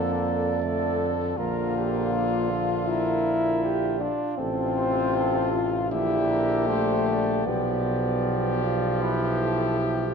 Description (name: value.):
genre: classical, brass quintet.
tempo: 79 BPM.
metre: 4/4.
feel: rubato.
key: unclear.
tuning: A4 = 441 Hz.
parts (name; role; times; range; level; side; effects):
warm trumpet; melody; 0.0-10.1 s; F4 to A4; -30 LUFS; left 8 dB; none.
warm flugelhorn; second line; 0.0-10.1 s; F4 to D5; -31 LUFS; right 7 dB; none.
brilliant trombone; accompaniment; 0.0-10.1 s; C3 to F3; -33 LUFS; right 3 dB; none.
warm French horn; accompaniment; 0.0-10.0 s; A3 to F4; -27 LUFS; left 3 dB; none.
warm tuba; bass; 0.0-10.1 s; A1 to F2; -29 LUFS; right 4 dB; none.
room: wet concert hall reverb, RT60 1.7 s.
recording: dark, warm production.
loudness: -22 LUFS.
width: side -6 dB against mid.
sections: 0.0-10.1 A section.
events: none.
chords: 0.0 Dm/F; 1.4 Bb; 4.4 F/A; 5.9 Gm/Bb; 7.5 G7/B.